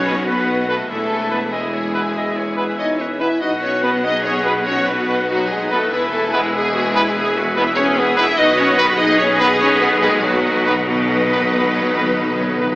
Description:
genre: cinematic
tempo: 96 BPM (dotted quarters)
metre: 12/8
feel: straight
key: B mixolydian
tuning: A4 = 441 Hz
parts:
  - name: warm symphonic violin section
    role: melody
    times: 0.0-12.8 s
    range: F#4 to E5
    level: -24 LUFS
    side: left 1 dB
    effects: none
  - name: clear oboe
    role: second line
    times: 0.0-12.8 s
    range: D#5 to F#5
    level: -26 LUFS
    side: equal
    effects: none
  - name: clear symphonic violin section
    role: second line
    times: 0.0-12.8 s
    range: G#4 to G#5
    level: -27 LUFS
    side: equal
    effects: none
  - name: mellow flute section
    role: second line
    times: 0.0-12.6 s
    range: F#4 to E5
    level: -26 LUFS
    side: left 1 dB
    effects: none
  - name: warm clarinet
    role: second line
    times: 0.0-12.8 s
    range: B4 to D#5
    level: -27 LUFS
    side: equal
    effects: none
  - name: rich symphonic viola section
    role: accompaniment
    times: 0.0-12.8 s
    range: D#4 to G#4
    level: -23 LUFS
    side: equal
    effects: none
  - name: mellow French horn section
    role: sustained chords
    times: 0.0-12.8 s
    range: F#3 to E4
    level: -22 LUFS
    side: left 1 dB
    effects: none
  - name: clear studio double bass section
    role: bass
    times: 0.0-12.8 s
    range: E1 to B1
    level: -34 LUFS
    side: equal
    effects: none
  - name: mellow tuba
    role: bass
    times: 0.0-12.8 s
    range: E1 to B1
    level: -27 LUFS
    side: equal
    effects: none
  - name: rich symphonic cello section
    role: bass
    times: 0.0-12.8 s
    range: E2 to B2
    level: -26 LUFS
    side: equal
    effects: none
  - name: bright trombone section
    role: sustained chords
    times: 0.1-12.7 s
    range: B2 to B3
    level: -28 LUFS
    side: right 1 dB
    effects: none
  - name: warm trumpet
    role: stabs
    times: 0.1-12.7 s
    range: B4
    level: -24 LUFS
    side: equal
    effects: none
  - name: timpani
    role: percussion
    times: 8.4-12.8 s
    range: B2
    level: -32 LUFS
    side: equal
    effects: none
room: wet scoring stage reverb, RT60 2.0 s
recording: AM radio sound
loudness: -15 LUFS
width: side -20 dB against mid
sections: 0.0-12.8 A section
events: timpani fill 8.4-12.8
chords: 0.0 B; 0.9 E; 3.4 B; 5.9 E; 8.4 B

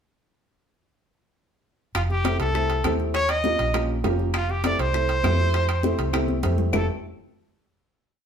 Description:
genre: Afro-Cuban jazz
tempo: 201 BPM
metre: 4/4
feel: straight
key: F major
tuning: A4 = 439 Hz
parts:
  - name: hollow-body short-scale fingered electric bass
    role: bass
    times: 1.9-6.9 s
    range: F1 to F2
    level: -25 LUFS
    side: equal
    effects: none
  - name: claves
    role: percussion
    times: 1.9-6.8 s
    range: none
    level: -36 LUFS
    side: left 6 dB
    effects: none
  - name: congas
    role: percussion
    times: 1.9-6.8 s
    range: none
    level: -32 LUFS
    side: left 4 dB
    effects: none
  - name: timbales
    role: percussion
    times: 1.9-6.8 s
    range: none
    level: -33 LUFS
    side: right 5 dB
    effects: none
  - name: clear trumpet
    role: melody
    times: 2.0-6.9 s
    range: F4 to Eb5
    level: -25 LUFS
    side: right 1 dB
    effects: none
  - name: bongos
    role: percussion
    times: 2.0-6.8 s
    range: none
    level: -35 LUFS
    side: left 5 dB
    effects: none
  - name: dark upright piano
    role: accompaniment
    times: 2.3-6.9 s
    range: A3 to A4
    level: -28 LUFS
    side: right 1 dB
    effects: none
room: moderate studio reverb, RT60 0.8 s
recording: band playing live in one room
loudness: -21 LUFS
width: side -7 dB against mid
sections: 2.0-6.7 A section; 6.7-7.9 final chord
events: drum fill 6.1-6.7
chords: 2.0 Fmaj9; 3.1 Eb9; 4.3 Fmaj9

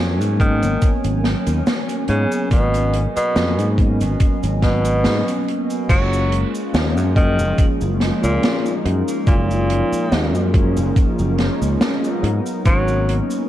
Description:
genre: vaporwave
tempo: 71 BPM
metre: 4/4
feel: swing 54% on 16ths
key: unclear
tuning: A4 = 439 Hz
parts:
  - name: mellow synth brass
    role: accompaniment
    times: 0.0-13.5 s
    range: E#3 to E#4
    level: -23 LUFS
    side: equal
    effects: lush chorus, analog delay
  - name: warbly tape-like pad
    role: sustained chords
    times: 0.0-13.5 s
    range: G#3 to G#5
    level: -32 LUFS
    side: equal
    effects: chorus, built-in reverb
  - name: fingered electric bass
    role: bass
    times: 0.0-13.2 s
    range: F#1 to G#2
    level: -20 LUFS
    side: equal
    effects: tube saturation
  - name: open jazz drum kit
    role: drums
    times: 0.2-13.5 s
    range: cabasa, crash cymbal, hi-hat, snare drum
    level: -23 LUFS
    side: equal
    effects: gated reverb
  - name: warm tenor saxophone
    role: melody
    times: 0.4-13.2 s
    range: A#2 to F#3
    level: -23 LUFS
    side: equal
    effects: tape echo
  - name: electronic kick drum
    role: drums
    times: 0.4-12.8 s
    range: none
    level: -16 LUFS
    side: equal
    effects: none
room: light reverb, small room ambience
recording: cassette tape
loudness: -16 LUFS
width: side -13 dB against mid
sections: 0.0-5.9 A section; 5.9-13.5 B section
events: band accent 5.0-5.5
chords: 0.0 G#m11; 5.9 F#maj9; 12.2 G#m11

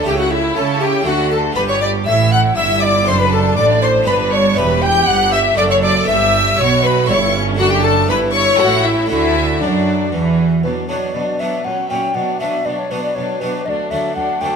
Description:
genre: classical, baroque-style concerto movement with solo episodes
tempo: 119 BPM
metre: 3/4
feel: straight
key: D major, B minor from 10.6 s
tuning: A4 = 443 Hz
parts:
  - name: rich chamber violin section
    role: melody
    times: 0.0-14.6 s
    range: F#4 to G6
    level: -21 LUFS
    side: left 2 dB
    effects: none
  - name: rich chamber violin section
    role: second line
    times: 0.0-14.6 s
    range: C#4 to G5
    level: -20 LUFS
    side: left 3 dB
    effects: none
  - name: harpsichord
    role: accompaniment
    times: 0.0-14.6 s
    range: D2 to A4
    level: -25 LUFS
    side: right 1 dB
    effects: none
  - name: rich chamber viola section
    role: accompaniment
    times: 0.0-14.6 s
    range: F#3 to A4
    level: -24 LUFS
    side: right 4 dB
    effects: none
  - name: clear chamber double bass section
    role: bass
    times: 0.0-10.6 s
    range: E1 to C#3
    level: -22 LUFS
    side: right 4 dB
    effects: none
  - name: rich studio cello section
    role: bass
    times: 0.0-14.5 s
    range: D2 to C#4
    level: -21 LUFS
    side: right 4 dB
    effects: none
  - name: mellow hollow tenor recorder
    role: melody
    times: 0.1-14.6 s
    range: D4 to G5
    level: -19 LUFS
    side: left 2 dB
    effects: none
room: light reverb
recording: none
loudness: -13 LUFS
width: side -6 dB against mid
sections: 0.0-10.6 A section; 10.6-14.6 B section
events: none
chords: 0.1 A7/C#; 1.1 D; 1.6 G; 3.1 D7/F#; 4.1 G; 4.6 Em; 5.6 D/F#; 6.1 Em/G; 7.1 A7/G; 7.6 D/F#; 8.1 Em/G; 8.6 A; 9.1 D; 10.6 Bm; 11.6 F#/A#; 12.2 Bm; 13.7 D

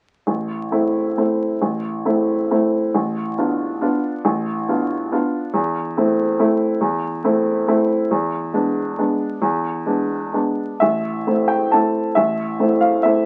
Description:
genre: classical, piano waltz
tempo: 121-146 BPM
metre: 3/4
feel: rubato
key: A minor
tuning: A4 = 440 Hz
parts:
  - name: clear upright piano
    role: solo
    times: 0.3-13.3 s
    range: A1 to A5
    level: -20 LUFS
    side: equal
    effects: none
room: moderate studio ambience, RT60 0.5 s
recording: very old 78 rpm record, vinyl crackle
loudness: -20 LUFS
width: mono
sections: 0.3-10.8 A section; 10.8-13.3 B section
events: none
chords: 0.3 Am; 2.9 Bm7b5/A; 5.5 Am/E; 8.1 E7; 10.8 Am

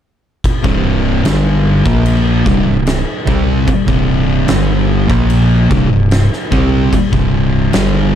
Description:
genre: stoner and doom metal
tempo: 74 BPM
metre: 4/4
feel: straight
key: unclear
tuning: A4 = 441 Hz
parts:
  - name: oversized low-tuned drum kit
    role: drums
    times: 0.4-7.9 s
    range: crash cymbal, kick drum, snare drum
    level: -17 LUFS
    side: equal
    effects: none
  - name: thick fuzz guitar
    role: riff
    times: 0.6-8.2 s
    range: C2 to C4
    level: -16 LUFS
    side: left 8 dB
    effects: distortion
  - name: thick fuzz guitar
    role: riff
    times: 0.6-8.2 s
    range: C2 to C4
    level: -15 LUFS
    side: right 7 dB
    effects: distortion
  - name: growling FM bass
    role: bass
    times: 0.7-8.2 s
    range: C1 to C2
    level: -17 LUFS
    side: equal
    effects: overdrive
room: light reverb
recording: dark, warm production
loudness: -10 LUFS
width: side -10 dB against mid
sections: 0.4-8.2 A section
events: none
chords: 0.4 C5

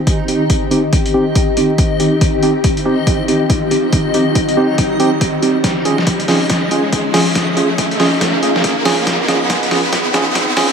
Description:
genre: deep dubstep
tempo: 140 BPM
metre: 4/4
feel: swing 61% on 16ths, half-time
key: C phrygian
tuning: A4 = 439 Hz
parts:
  - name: granular cloud pad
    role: sustained chords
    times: 0.0-10.7 s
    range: Eb3 to Ab4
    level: -19 LUFS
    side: left 1 dB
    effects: built-in reverb
  - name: riser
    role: sound effects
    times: 1.9-10.7 s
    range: none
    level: -21 LUFS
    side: right 1 dB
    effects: none
  - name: backwards swelling texture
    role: texture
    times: 0.0-10.7 s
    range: Eb4 to Eb5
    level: -23 LUFS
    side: left 2 dB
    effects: built-in reverb
  - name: electronic kick drum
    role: drums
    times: 0.1-10.5 s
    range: none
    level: -17 LUFS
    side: equal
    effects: overdrive
  - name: trip hop sampler-style drum kit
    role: drums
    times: 0.1-10.7 s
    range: hi-hat, snare drum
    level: -19 LUFS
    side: left 1 dB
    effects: none
  - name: tine electric piano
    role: stabs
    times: 0.3-10.7 s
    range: C4 to Ab4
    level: -18 LUFS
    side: right 2 dB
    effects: medium tremolo, low-pass filter, dub echo
room: moderate spring reverb, RT60 1.6 s, digital ambience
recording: vinyl crackle, high-pass filter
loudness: -12 LUFS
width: side -6 dB against mid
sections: 0.0-10.7 A section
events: build-up 0.0-10.7; filter sweep on tine electric piano 0.0-10.7; filter sweep 0.0-10.7; riser 1.9-10.7; drum fill 5.6-10.7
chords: 0.0 Cm; 5.6 Db

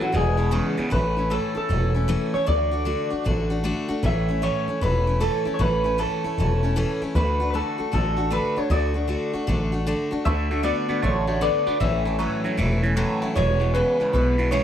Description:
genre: rock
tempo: 154 BPM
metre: 4/4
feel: swing 65% on 8ths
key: A major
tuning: A4 = 441 Hz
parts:
  - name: electric guitar through a small old amp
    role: melody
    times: 0.0-14.6 s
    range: F#4 to E5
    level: -25 LUFS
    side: equal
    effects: wide subtle chorus, tape echo
  - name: picked steel-string acoustic guitar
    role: accompaniment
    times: 0.0-14.6 s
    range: E2 to F#4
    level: -27 LUFS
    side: left 2 dB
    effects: none
  - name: twangy electric guitar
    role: riff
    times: 0.0-0.9, 10.3-14.6 s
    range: E2 to B3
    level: -27 LUFS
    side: right 3 dB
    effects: phaser
  - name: upright bass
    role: bass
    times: 0.0-14.6 s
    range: E1 to D2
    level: -24 LUFS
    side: equal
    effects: none
room: light reverb, small room ambience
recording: none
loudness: -20 LUFS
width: side -10 dB against mid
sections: 0.9-14.6 A section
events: none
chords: 0.1 E; 0.9 A; 2.5 D; 4.0 A; 7.2 D; 11.8 A; 13.4 E

